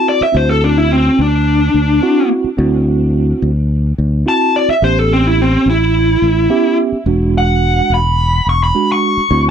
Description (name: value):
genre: straight-eighth soul blues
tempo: 107 BPM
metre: 4/4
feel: straight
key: unclear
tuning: A4 = 440 Hz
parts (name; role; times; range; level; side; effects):
- smooth overdriven lead guitar; melody; 0.0-9.4 s; C4 to C#6; -14 LUFS; equal; none
- mellow tine electric piano; accompaniment; 0.0-9.5 s; G#3 to E5; -17 LUFS; right 5 dB; medium stereo tremolo
- fingered electric bass; bass; 0.2-9.5 s; E1 to D2; -14 LUFS; left 1 dB; none
room: light reverb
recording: dry, close 1970s-style studio recording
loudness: -11 LUFS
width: side -8 dB against mid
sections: 0.0-9.5 A section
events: tine electric piano fill 6.2-7.1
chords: 0.0 D7; 4.8 A7; 7.1 E7